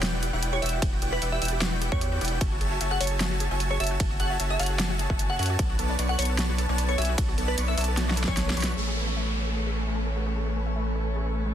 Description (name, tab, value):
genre	future bass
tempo	151 BPM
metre	4/4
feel	half-time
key	A major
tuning	A4 = 440 Hz
part	airy dreamy lead	arpeggios	0.0-8.7 s	G5 to C#6	-38 LUFS	equal	chorus, sidechain pumping, dub echo
part	wide unison pluck	arpeggios	0.0-11.5 s	F#4 to A5	-38 LUFS	left 2 dB	sidechain pumping, dub echo
part	dense compressed supersaw	riff	0.0-11.5 s	A3 to C#6	-32 LUFS	equal	sidechain pumping, low-pass filter
part	saturated sub bass	bass	0.0-11.5 s	E1 to F#2	-28 LUFS	equal	sidechain pumping
part	big-room dance drum kit	drums	0.0-8.7 s	hi-hat, ride cymbal, snare drum	-32 LUFS	equal	overdrive, small room ambience
part	glassy wavetable pluck	melody	0.5-8.8 s	B4 to F#5	-33 LUFS	equal	chorus, sidechain pumping, ping-pong delay
part	electronic kick drum	drums	0.8-8.4 s	none	-27 LUFS	equal	overdrive, small room ambience
part	warm chamber string section	sustained chords	8.8-11.5 s	A3 to C#4	-40 LUFS	left 5 dB	sidechain pumping, low-pass filter
part	downlifter	sound effects	8.8-11.5 s	none	-36 LUFS	equal	none
room	light reverb, digital ambience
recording	dense, heavily limited modern master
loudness	-24 LUFS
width	side -10 dB against mid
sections	0.0-8.8 A section; 8.8-11.5 B section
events	drop 0.0-8.8; drum fill 8.0-8.8; band accent 8.6; filter sweep on supersaw synth 8.8-11.5; filter sweep on synth arpeggio sound 8.8-11.5; filter sweep on string section 8.8-11.5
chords	0.0 Em9; 2.4 F#m9; 5.6 Bm9; 8.8 Amaj9